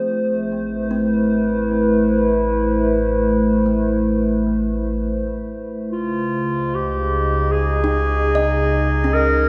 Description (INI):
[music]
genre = ambient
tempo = free time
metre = none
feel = none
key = unclear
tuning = A4 = 435 Hz
[part]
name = warbly tape-like pad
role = sustained chords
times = 0.0-9.5 s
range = Db3 to Eb5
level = -21 LUFS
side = equal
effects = chorus, built-in reverb
[part]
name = kalimba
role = arpeggios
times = 0.0-9.5 s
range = A3 to Eb5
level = -31 LUFS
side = equal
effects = analog delay
[part]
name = deep rumbling drone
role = bass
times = 0.6-9.5 s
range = A1 to Db2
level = -26 LUFS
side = equal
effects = built-in reverb
[part]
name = warm clarinet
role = melody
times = 5.9-9.5 s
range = F4 to Bb4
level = -23 LUFS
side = equal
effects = analog delay
[sound]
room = wet echo chamber reverb, RT60 1.9 s, small room reverb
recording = echo-heavy mix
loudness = -19 LUFS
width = mono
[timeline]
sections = 0.0-9.5 A section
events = fade-in on kalimba 0.0-9.5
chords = 0.0 Amadd9; 5.9 Dbsus2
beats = free time